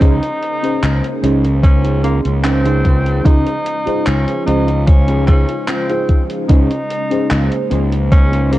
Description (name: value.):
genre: vaporwave.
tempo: 74 BPM.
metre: 4/4.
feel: straight.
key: unclear.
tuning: A4 = 435 Hz.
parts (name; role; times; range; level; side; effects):
warm tenor saxophone; melody; 0.0-8.6 s; Bb3 to Eb4; -22 LUFS; equal; analog delay.
FM electric piano with soft pad layer; accompaniment; 0.0-8.6 s; Db3 to C6; -20 LUFS; equal; analog chorus.
soft string machine; sustained chords; 0.3-8.6 s; Db3 to F4; -26 LUFS; left 1 dB; ensemble chorus.
mellow electric guitar; riff; 0.0-8.5 s; Db4 to Eb5; -23 LUFS; right 2 dB; analog chorus.
fuzz fingered electric bass; bass; 0.0-8.6 s; Db2; -16 LUFS; equal; overdrive, tube saturation.
electronic kick drum; drums; 0.0-8.3 s; none; -10 LUFS; equal; none.
gated 80s digital drum machine; drums; 0.0-8.6 s; handclaps, hi-hat; -26 LUFS; equal; gated reverb.
room: little or no reverb.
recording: dark, warm production, cassette tape.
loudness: -12 LUFS.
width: side -15 dB against mid.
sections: 0.0-8.6 A section.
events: band accent 0.0.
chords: 0.0 Bbm11/Db; 3.3 Dbmaj7; 6.5 Bbm11/Db.